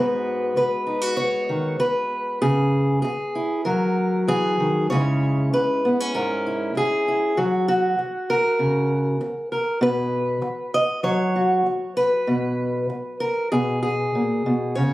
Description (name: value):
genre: folk, solo fingerstyle acoustic guitar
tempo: 97 BPM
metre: 4/4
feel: straight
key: unclear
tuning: A4 = 441 Hz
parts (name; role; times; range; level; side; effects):
- fingerpicked acoustic archtop guitar; solo; 0.0-14.9 s; G#2 to D#5; -20 LUFS; equal; none
room: light reverb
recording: recorded on a phone in the room, studio reverb, compression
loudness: -20 LUFS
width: side -17 dB against mid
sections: 0.0-4.9 A section; 4.9-14.9 B section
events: none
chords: 0.0 G#m7; 2.4 C#m7; 3.7 F#add9; 4.9 C#m; 7.4 F#; 9.8 B5; 12.3 G#madd9